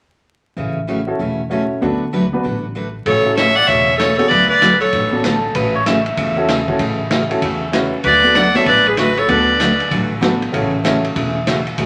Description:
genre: country, western swing.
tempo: 193 BPM.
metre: 4/4.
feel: swing 64% on 8ths.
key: A major.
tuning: A4 = 440 Hz.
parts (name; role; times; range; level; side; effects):
picked steel-string acoustic guitar; accompaniment; 0.6-11.9 s; C#3 to B4; -23 LUFS; equal; none.
upright bass; bass; 0.6-11.9 s; E1 to E2; -29 LUFS; equal; none.
clear upright piano; accompaniment; 1.1-11.0 s; B3 to B4; -23 LUFS; equal; none.
bright fiddle; melody; 3.1-5.2, 8.0-9.9 s; B4 to F#5; -17 LUFS; equal; none.
clear clarinet; second line; 3.1-5.2, 8.0-9.9 s; F#4 to D5; -20 LUFS; equal; none.
vintage drum kit; drums; 3.1-11.9 s; hi-hat, kick drum, ride cymbal, snare drum; -24 LUFS; equal; none.
pedal steel guitar; second line; 5.2-6.7 s; A4 to E5; -22 LUFS; equal; none.
room: wet club reverb, RT60 0.9 s.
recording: vinyl crackle.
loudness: -16 LUFS.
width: mono.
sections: 0.6-3.1 A section; 3.1-11.9 B section.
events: none.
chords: 0.6 A6; 1.8 D6; 3.1 A6; 4.3 D6; 5.6 A6; 8.0 D6; 10.5 A6.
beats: | 0.57 0.88 1.19 1.50 | 1.82 2.13 2.44 2.75 | 3.06 3.37 3.69 4.00 | 4.31 4.62 4.93 5.24 | 5.55 5.86 6.17 6.49 | 6.80 7.11 7.42 7.73 | 8.04 8.35 8.67 8.98 | 9.29 9.60 9.91 10.22 | 10.54 10.85 11.16 11.47 | 11.78.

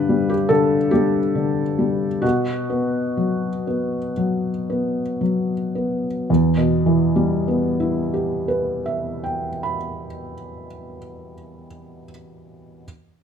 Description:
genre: neoclassical minimalist piano.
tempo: 54-74 BPM.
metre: 4/4.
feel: rubato.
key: E minor.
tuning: A4 = 440 Hz.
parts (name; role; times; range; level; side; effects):
felt-muted upright piano; solo; 0.0-12.9 s; E2 to B5; -19 LUFS; left 1 dB; none.
room: moderate large studio reverb, RT60 1.1 s.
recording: band playing live in one room.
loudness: -19 LUFS.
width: side -7 dB against mid.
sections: 0.0-6.3 A section; 6.3-10.6 B section.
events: slowing down 0.0-6.3.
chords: 0.0 G; 2.2 B5; 6.3 Em.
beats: 0.49 1.34 | 2.23 3.17 4.17 5.20 | 6.28 7.36 8.45 9.55.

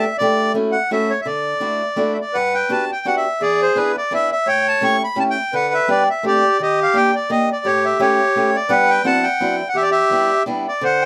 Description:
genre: musette waltz.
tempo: 170 BPM.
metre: 3/4.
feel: swing 54% on 8ths.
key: G major.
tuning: A4 = 439 Hz.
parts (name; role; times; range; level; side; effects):
accordion; melody; 0.0-11.1 s; G4 to C#6; -19 LUFS; equal; none.
picked acoustic archtop guitar; accompaniment; 0.0-11.1 s; E2 to G#4; -23 LUFS; equal; none.
room: light reverb.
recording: close, detailed microphones.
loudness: -18 LUFS.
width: mono.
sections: 0.0-2.3 A section; 2.3-11.1 B section.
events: none.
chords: 0.2 A7sus4; 0.6 A6; 1.3 Dadd9; 2.3 Gmaj7; 3.4 E7; 4.5 A7; 5.5 G/D; 6.2 D7sus4; 6.6 Ebmaj7; 7.6 A7; 8.7 G; 9.1 D13; 9.8 Em7.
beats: | 0.21 0.56 0.92 | 1.27 1.63 1.98 | 2.34 2.70 3.05 | 3.41 3.76 4.11 | 4.46 4.82 5.17 | 5.52 5.87 6.23 | 6.58 6.94 7.29 | 7.64 8.00 8.35 | 8.70 9.05 9.40 | 9.76 10.11 10.46 | 10.82.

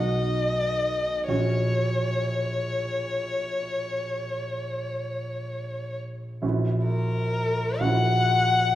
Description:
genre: classical, romantic duo for violin and grand piano.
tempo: 46 BPM (dotted quarters).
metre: 12/8.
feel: rubato.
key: unclear.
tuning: A4 = 439 Hz.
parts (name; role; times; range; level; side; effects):
dark violin; melody; 0.0-8.8 s; A#4 to F#5; -26 LUFS; left 2 dB; none.
warm concert grand piano; accompaniment; 0.0-8.8 s; A#1 to F#4; -27 LUFS; right 1 dB; none.
room: wet recital hall reverb, RT60 1.5 s.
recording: heard from further back in the room.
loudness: -24 LUFS.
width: side -13 dB against mid.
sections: 0.0-8.8 A section.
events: none.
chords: 0.0 B; 1.3 F#/A#; 6.4 F#7/A#.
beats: | 1.28 2.57 3.86 5.15 | 6.43 7.80.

